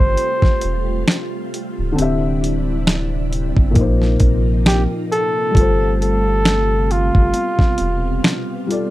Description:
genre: lo-fi hip hop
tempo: 67 BPM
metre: 4/4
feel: swing 56% on 16ths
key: unclear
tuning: A4 = 440 Hz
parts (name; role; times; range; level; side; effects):
- trumpet with bucket mute; melody; 0.0-8.7 s; F4 to C5; -20 LUFS; equal; low-pass filter, analog delay, plate reverb
- felt-muted upright piano; accompaniment; 0.0-8.9 s; Bb2 to E5; -22 LUFS; left 3 dB; cassette tape, low-pass filter, plate reverb
- ensemble organ-string; sustained chords; 0.0-8.9 s; B2 to F4; -25 LUFS; equal; ensemble chorus, low-pass filter
- soft dub sub bass; bass; 0.0-8.2 s; C#1 to Bb1; -19 LUFS; equal; none
- dusty soul sampler-style drum kit; drums; 0.2-8.9 s; finger snaps, hi-hat, kick drum, snare drum; -16 LUFS; equal; overdrive
room: light reverb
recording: none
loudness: -15 LUFS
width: side -16 dB against mid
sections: 0.0-8.9 A section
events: none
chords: 0.0 G9sus4; 2.0 D9sus4; 3.8 Bbsus24; 5.5 G9sus4

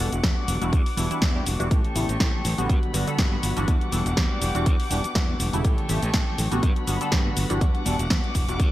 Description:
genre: filtered disco house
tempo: 122 BPM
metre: 4/4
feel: swing 55% on 16ths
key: E dorian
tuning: A4 = 438 Hz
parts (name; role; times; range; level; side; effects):
- funky polysynth comp; accompaniment; 0.0-8.6 s; C#3 to A4; -30 LUFS; right 1 dB; chorus, phaser, sidechain pumping, low-pass filter
- rich chamber violin section; sustained chords; 0.0-8.7 s; G3 to D6; -33 LUFS; left 1 dB; sidechain pumping, low-pass filter
- semi-hollow electric guitar; riff; 0.0-8.7 s; E3 to G4; -33 LUFS; left 2 dB; sidechain pumping, low-pass filter
- modern bright fingered electric bass; bass; 0.0-8.7 s; E1 to A2; -28 LUFS; equal; sidechain pumping, low-pass filter
- house drum kit; drums; 0.1-8.7 s; cabasa, hi-hat, snare drum; -28 LUFS; equal; sidechain pumping on hats, sidechain pumping on perc, gated reverb
- maracas and congas; percussion; 0.1-8.7 s; none; -37 LUFS; left 2 dB; none
- electronic kick drum; drums; 0.2-8.7 s; none; -23 LUFS; equal; none
room: light reverb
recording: bright 1980s-style digital production, faint mains hum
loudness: -21 LUFS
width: side -15 dB against mid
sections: 0.0-8.7 A section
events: none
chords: 0.0 Em9; 1.7 A7; 2.7 Gmaj7; 3.7 Em9; 5.6 A7; 6.6 Gmaj7; 7.6 Em9

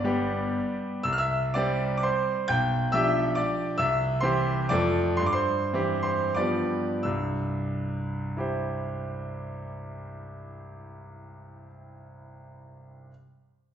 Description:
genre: classical, romantic triple-time dance for piano with dotted rhythms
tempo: 83-147 BPM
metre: 3/4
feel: rubato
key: C major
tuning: A4 = 440 Hz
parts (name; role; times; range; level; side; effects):
- bright concert grand piano; solo; 0.0-13.1 s; G1 to G6; -26 LUFS; equal; none
room: wet recital hall reverb, RT60 1.4 s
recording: recorded in a church or concert hall, nothing above 7.8 kHz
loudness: -24 LUFS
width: side -9 dB against mid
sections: 0.0-7.0 A section; 7.0-11.0 B section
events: slowing down 3.2-7.0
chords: 0.0 G; 1.1 C; 2.5 G7/B; 3.8 C; 4.7 Dm/F; 5.2 C/G; 6.4 G7; 7.0 C

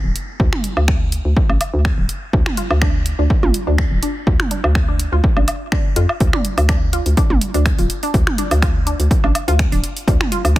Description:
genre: minimal techno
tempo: 124 BPM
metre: 4/4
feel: swing 54% on 16ths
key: D minor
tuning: A4 = 441 Hz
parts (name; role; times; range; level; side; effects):
- hollow knocking FM bass; bass; 0.0-10.6 s; D1 to F2; -17 LUFS; equal; sidechain pumping
- punchy analog drum machine; drums; 0.2-10.6 s; finger snaps, hi-hat; -25 LUFS; equal; overdrive, soft clipping on snare
- electronic kick drum; drums; 0.4-10.6 s; none; -18 LUFS; equal; overdrive
- electronic toms and woodblock; percussion; 0.5-10.5 s; none; -23 LUFS; right 2 dB; overdrive, digital delay
- resonant blip pluck; riff; 2.3-10.6 s; D4 to F4; -25 LUFS; equal; phaser, sidechain pumping, dub echo
room: digital ambience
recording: dense, heavily limited modern master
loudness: -14 LUFS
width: side -16 dB against mid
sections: 0.0-10.6 A section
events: none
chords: none

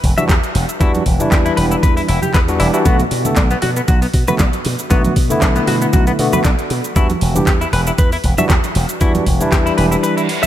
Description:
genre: nu-disco, nu disco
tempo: 117 BPM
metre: 4/4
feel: swing 55% on 16ths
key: E minor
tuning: A4 = 440 Hz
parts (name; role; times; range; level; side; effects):
- slap bass with an envelope filter; bass; 0.0-9.9 s; E1 to B2; -18 LUFS; equal; none
- electronic kick drum; drums; 0.0-9.6 s; none; -15 LUFS; equal; studio reverb
- pop drum kit; drums; 0.0-10.5 s; handclaps, hi-hat, shaker; -24 LUFS; right 1 dB; studio reverb
- barky tine electric piano; accompaniment; 0.2-10.3 s; D3 to A4; -19 LUFS; equal; medium stereo tremolo, sidechain pumping, analog delay
- direct-recorded clean electric guitar; riff; 0.2-10.5 s; B3 to E5; -21 LUFS; left 2 dB; analog chorus, analog delay
- congas; percussion; 0.2-10.5 s; none; -25 LUFS; right 4 dB; none
- reverse cymbal; sound effects; 10.2-10.5 s; none; -22 LUFS; right 4 dB; none
room: light reverb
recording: none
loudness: -12 LUFS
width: side -12 dB against mid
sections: 0.0-10.5 A section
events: reverse cymbal 10.2-10.5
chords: 0.0 Em9; 2.9 Bm7; 7.0 Em9

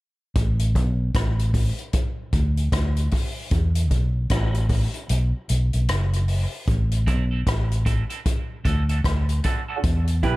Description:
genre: dub reggae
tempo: 76 BPM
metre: 4/4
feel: swing 61% on 16ths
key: A dorian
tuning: A4 = 440 Hz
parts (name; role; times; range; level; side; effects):
- vintage muted fingered electric bass; bass; 0.4-10.4 s; F#1 to E2; -21 LUFS; equal; none
- vintage drum kit; drums; 0.4-10.4 s; hi-hat, kick drum, rim click; -25 LUFS; equal; none
- electric guitar through a small old amp; accompaniment; 7.1-10.4 s; C4 to B4; -30 LUFS; right 5 dB; high-pass filter, low-pass filter, dub echo
room: small room ambience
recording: echo-heavy mix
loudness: -20 LUFS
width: side -20 dB against mid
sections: 0.4-6.7 A section; 6.7-10.4 B section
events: kick muted 5.1-6.7; filter sweep on clean electric guitar 6.7-10.4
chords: 0.4 Asus2; 1.9 N.C.; 3.5 E5; 5.1 B5; 6.7 Am; 8.3 D; 9.8 Em

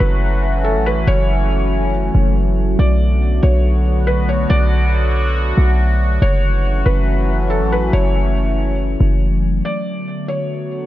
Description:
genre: hip hop, atmospheric cloud-rap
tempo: 140 BPM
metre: 4/4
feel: half-time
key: B minor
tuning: A4 = 440 Hz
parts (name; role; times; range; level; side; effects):
- felt-muted upright piano; melody; 0.0-10.9 s; A4 to D5; -24 LUFS; equal; low-pass filter, digital delay
- sweeping resonant pad; sustained chords; 0.0-10.9 s; D3 to F#4; -20 LUFS; left 1 dB; chorus, phaser
- warm 808-style bass; bass; 0.0-9.6 s; F#1 to B1; -15 LUFS; equal; none
room: small room ambience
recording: none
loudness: -14 LUFS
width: side -14 dB against mid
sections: 0.0-9.6 A section; 9.6-10.9 B section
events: none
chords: 0.0 F#m7; 2.8 Bm7; 6.2 F#m7; 9.6 Bm7

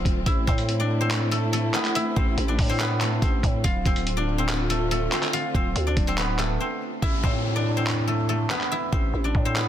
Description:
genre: hip hop, trap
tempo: 142 BPM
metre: 4/4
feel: half-time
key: A minor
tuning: A4 = 444 Hz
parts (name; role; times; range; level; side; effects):
- guzheng; melody; 0.0-9.7 s; A3 to F5; -27 LUFS; equal; ping-pong delay
- warm symphonic string section; sustained chords; 0.0-7.0 s; D3 to F4; -32 LUFS; left 2 dB; none
- growling 808-style bass; bass; 0.0-9.7 s; D1 to A2; -26 LUFS; equal; none
- lo-fi sampler-style drum kit; drums; 0.1-9.7 s; handclaps, hi-hat, kick drum; -25 LUFS; equal; soft clipping on snare
- downlifter; sound effects; 7.0-9.7 s; none; -34 LUFS; left 1 dB; none
room: digital ambience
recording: dense, heavily limited modern master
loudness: -21 LUFS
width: side -10 dB against mid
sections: 0.0-7.0 A section; 7.0-9.7 B section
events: break 6.6-7.0; hi-hats muted 7.0-9.7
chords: 0.3 Am; 3.6 Dm7; 7.0 Am

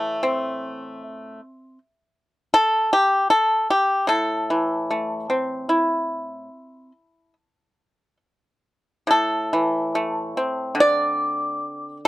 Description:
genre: chinese traditional, Chinese solo plucked strings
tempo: 65-79 BPM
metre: 4/4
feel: rubato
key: A yu mode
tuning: A4 = 440 Hz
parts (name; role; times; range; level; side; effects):
- pipa; solo; 0.0-12.1 s; A2 to D5; -19 LUFS; equal; none
room: light reverb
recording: dry, close 1970s-style studio recording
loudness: -19 LUFS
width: side -16 dB against mid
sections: 0.0-9.1 A section; 9.1-12.1 B section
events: none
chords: none

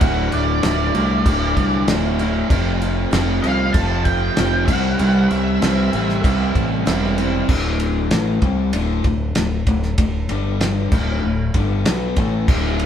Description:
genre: classic rock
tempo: 96 BPM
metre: 4/4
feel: straight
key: unclear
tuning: A4 = 442 Hz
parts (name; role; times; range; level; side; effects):
- octave-fuzz lead guitar; melody; 0.0-6.5 s; D5 to A5; -24 LUFS; right 3 dB; distortion
- picked plugged-in twelve-string acoustic guitar; accompaniment; 0.0-7.5 s; F2 to F#4; -29 LUFS; right 4 dB; none
- crunchy overdriven guitar; riff; 0.0-7.5, 12.5-12.9 s; D2 to C4; -23 LUFS; right 5 dB; none
- distorted electric guitar; riff; 0.0-12.9 s; D2 to C4; -23 LUFS; left 6 dB; distortion
- growling fingered electric bass; bass; 0.0-12.9 s; D1 to C2; -21 LUFS; equal; overdrive
- cloth-damped thuddy drum kit; drums; 0.0-12.9 s; crash cymbal, kick drum, ride cymbal, snare drum; -21 LUFS; equal; none
room: moderate stone room reverb, RT60 1.3 s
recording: band playing live in one room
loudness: -16 LUFS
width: side -9 dB against mid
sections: 0.0-7.5 A section; 7.5-12.9 B section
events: none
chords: 0.0 D; 2.5 F; 4.7 C; 7.5 D5; 10.3 G5; 10.9 D

